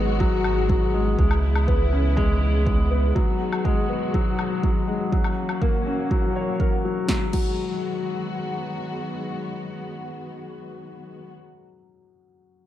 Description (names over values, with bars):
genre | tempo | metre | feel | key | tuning
piano and strings electronica | 122 BPM | 4/4 | straight | G# minor | A4 = 440 Hz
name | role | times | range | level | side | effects
dark symphonic string section | sustained chords | 0.0-11.3 s | C#3 to F#4 | -31 LUFS | equal | low-pass filter
felt-muted upright piano | riff | 0.0-12.7 s | F#3 to C#5 | -26 LUFS | left 3 dB | ping-pong delay
round analog bass | bass | 0.0-3.1 s | G#1 to C#2 | -22 LUFS | right 1 dB | sidechain pumping
electronic kick drum | drums | 0.2-7.5 s | none | -23 LUFS | right 1 dB | none
deep house drum kit | drums | 0.4-7.5 s | crash cymbal, snare drum, woodblock | -31 LUFS | left 1 dB | none
room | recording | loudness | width
light reverb | none | -20 LUFS | side -12 dB against mid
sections
0.0-7.1 A section; 7.1-11.0 B section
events
filter sweep on string section 0.0-7.1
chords
0.0 G#m7; 1.2 C#m7; 3.2 G#m7; 5.1 F#7; 7.1 G#m7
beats
0.20 0.69 | 1.18 1.68 2.17 2.66 | 3.15 3.64 4.13 4.63 | 5.12 5.61 6.10 6.59 | 7.08 7.58 8.07 8.56 | 9.05 9.54 10.04 10.53